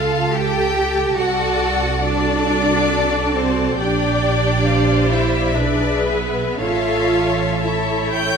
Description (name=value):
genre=classical, slow romantic movement for string orchestra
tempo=54-72 BPM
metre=3/4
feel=rubato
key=unclear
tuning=A4 = 440 Hz
part: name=clear chamber violin section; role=melody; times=0.0-8.4 s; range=B4 to G6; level=-24 LUFS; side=left 5 dB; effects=none
part: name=rich symphonic violin section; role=second line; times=0.0-8.4 s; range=A4 to A5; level=-24 LUFS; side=left 4 dB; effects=none
part: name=rich symphonic viola section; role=accompaniment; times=0.0-8.4 s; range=F#4 to D5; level=-22 LUFS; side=equal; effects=none
part: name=rich symphonic cello section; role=bass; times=0.0-8.4 s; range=B3 to G4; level=-21 LUFS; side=right 3 dB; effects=none
part: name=rich symphonic double bass section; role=bass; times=0.0-8.4 s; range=A1 to C#2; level=-22 LUFS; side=right 4 dB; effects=none
room=moderate scoring stage reverb, RT60 1.5 s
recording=minimal, uncompressed stereo recording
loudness=-16 LUFS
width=side -6 dB against mid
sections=0.0-8.4 A section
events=none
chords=0.0 A/C#; 1.2 D7/C; 3.8 Gm/Bb; 5.6 E7/B; 6.6 A